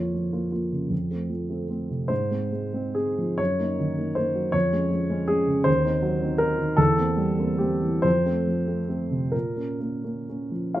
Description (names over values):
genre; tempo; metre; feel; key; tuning
classical, romantic character piece for solo piano; 41-55 BPM (dotted quarters); 6/8; rubato; Bb minor; A4 = 440 Hz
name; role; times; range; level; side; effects
dark grand piano; solo; 0.0-10.8 s; Eb2 to F5; -22 LUFS; equal; none
room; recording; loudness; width
light reverb; close, detailed microphones; -22 LUFS; side -14 dB against mid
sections
0.0-10.8 A section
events
none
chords
0.0 Bbm/F; 0.9 F; 2.1 Fm/Ab; 3.4 Ebm/Gb; 4.5 Db/F; 5.7 Cdim/Eb; 6.8 C7/E; 8.0 F; 9.3 Bbm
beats
0.92 | 2.10 3.39 | 4.55 5.67 | 6.79 8.05 | 9.33 10.75